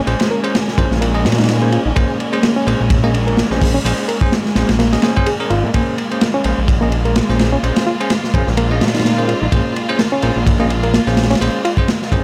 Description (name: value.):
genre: breakbeat, breaks.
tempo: 127 BPM.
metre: 4/4.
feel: swing 56% on 16ths.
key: Bb minor.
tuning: A4 = 438 Hz.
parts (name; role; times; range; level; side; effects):
rich studio string section; sustained chords; 0.0-12.2 s; Ab3 to F4; -26 LUFS; equal; sidechain pumping.
bell-like tine electric piano; stabs; 0.1-12.2 s; Db4 to Eb5; -25 LUFS; equal; tape echo.
fat analog bass; bass; 0.1-12.2 s; Ab1 to Bb2; -20 LUFS; equal; none.
crunchy breakbeat drum kit; drums; 0.1-12.2 s; hi-hat, kick drum, ride cymbal, snare drum; -19 LUFS; equal; none.
reed electric piano; riff; 0.3-11.7 s; Bb3 to Bb4; -23 LUFS; equal; fast tremolo, tube saturation, tape echo.
room: light reverb.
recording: none.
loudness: -16 LUFS.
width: mono.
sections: 0.0-12.2 A section.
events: none.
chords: 0.0 Bbm9.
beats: | 0.07 0.55 1.02 1.49 | 1.96 2.43 2.91 3.38 | 3.85 4.32 4.80 5.27 | 5.74 6.21 6.69 7.16 | 7.63 8.10 8.58 9.05 | 9.52 9.99 10.47 10.94 | 11.41 11.88.